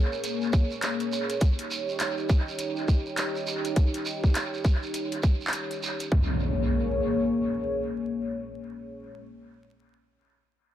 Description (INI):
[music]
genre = glitch hop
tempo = 102 BPM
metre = 4/4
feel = swing 61% on 16ths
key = Bb dorian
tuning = A4 = 440 Hz
[part]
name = dark analog pad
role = sustained chords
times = 0.0-9.2 s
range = Bb3 to Db5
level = -30 LUFS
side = left 1 dB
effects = chorus, sidechain pumping
[part]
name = shekere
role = percussion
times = 0.1-6.1 s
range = none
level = -37 LUFS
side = right 4 dB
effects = dub echo
[part]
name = drum and bass drum kit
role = drums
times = 0.2-6.1 s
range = handclaps, hi-hat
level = -34 LUFS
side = equal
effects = overdrive, small room ambience, dub echo
[part]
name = electronic kick drum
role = drums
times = 0.5-6.3 s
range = none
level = -22 LUFS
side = equal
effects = overdrive, small room ambience
[part]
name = impact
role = sound effects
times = 6.1-10.0 s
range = none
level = -30 LUFS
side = equal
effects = none
[sound]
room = moderate spring reverb, RT60 2.1 s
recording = echo-heavy mix, vinyl crackle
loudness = -25 LUFS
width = side -12 dB against mid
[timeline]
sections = 0.0-6.1 A section; 6.1-8.5 B section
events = none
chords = 0.0 Bbm7; 1.4 Eb7; 6.1 Bbm7